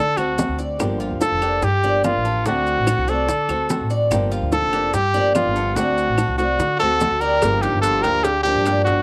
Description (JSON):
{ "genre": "latin, Cuban son and guajira", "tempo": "145 BPM", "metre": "4/4", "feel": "straight", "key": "unclear", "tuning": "A4 = 440 Hz", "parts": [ { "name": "clear trumpet", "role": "melody", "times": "0.0-9.0 s", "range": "F4 to Bb4", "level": "-22 LUFS", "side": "equal", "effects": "none" }, { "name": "Cuban tres", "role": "arpeggios", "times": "0.0-9.0 s", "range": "D4 to D5", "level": "-28 LUFS", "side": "equal", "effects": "none" }, { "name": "upright bass", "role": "bass", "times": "0.0-9.0 s", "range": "F1 to D3", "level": "-27 LUFS", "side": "equal", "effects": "none" }, { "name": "flamenco guitar", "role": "accompaniment", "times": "0.2-9.0 s", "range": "D3 to G4", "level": "-29 LUFS", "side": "equal", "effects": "none" }, { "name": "bongos and cowbell", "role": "percussion", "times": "0.2-9.0 s", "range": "none", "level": "-28 LUFS", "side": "equal", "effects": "none" }, { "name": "claves", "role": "percussion", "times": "0.2-8.9 s", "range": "none", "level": "-37 LUFS", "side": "equal", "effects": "none" }, { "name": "maracas", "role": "percussion", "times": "0.2-9.0 s", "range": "none", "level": "-38 LUFS", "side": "equal", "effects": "none" }, { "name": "warm studio violin section", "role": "second line", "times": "6.8-9.0 s", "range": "D4 to G4", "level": "-31 LUFS", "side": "equal", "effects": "none" } ], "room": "light reverb, small room ambience", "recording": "none", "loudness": "-19 LUFS", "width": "mono", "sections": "0.0-7.4 A section; 7.4-9.0 B section", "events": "none", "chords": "0.0 D7; 0.8 Gm7; 2.5 D7; 4.1 Gm7; 5.8 D7; 7.4 Gm7" }